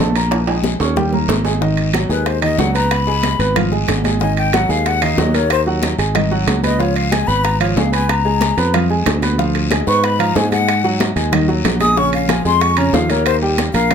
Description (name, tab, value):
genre	Afro-Cuban jazz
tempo	185 BPM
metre	4/4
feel	straight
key	unclear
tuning	A4 = 441 Hz
part	breathy jazz flute	second line	0.0-13.9 s	Cb5 to Eb6	-19 LUFS	left 4 dB	none
part	warm baby grand piano	accompaniment	0.0-13.9 s	Db3 to Db6	-19 LUFS	right 1 dB	none
part	sustaining fretless electric bass	bass	0.0-13.9 s	Ab1 to Ab2	-18 LUFS	equal	none
part	congas	percussion	0.0-13.9 s	none	-24 LUFS	right 1 dB	none
part	guiro	percussion	0.2-13.9 s	none	-29 LUFS	left 7 dB	none
part	timbales	percussion	0.2-13.9 s	none	-23 LUFS	right 7 dB	none
part	bongos	percussion	0.3-13.9 s	none	-26 LUFS	left 7 dB	none
room	light reverb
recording	none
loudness	-13 LUFS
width	side -7 dB against mid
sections	0.0-1.6 A section; 1.6-13.9 B section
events	drum fill 0.3-1.6; flute solo 1.6-13.9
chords	0.3 Bbm7; 1.0 Eb; 1.6 Ab5; 2.9 Db7; 4.2 Absus2; 6.2 Ab5; 6.8 Db6; 9.4 Ddim7; 10.7 Absus2; 12.0 Bbm7; 13.3 Ebadd9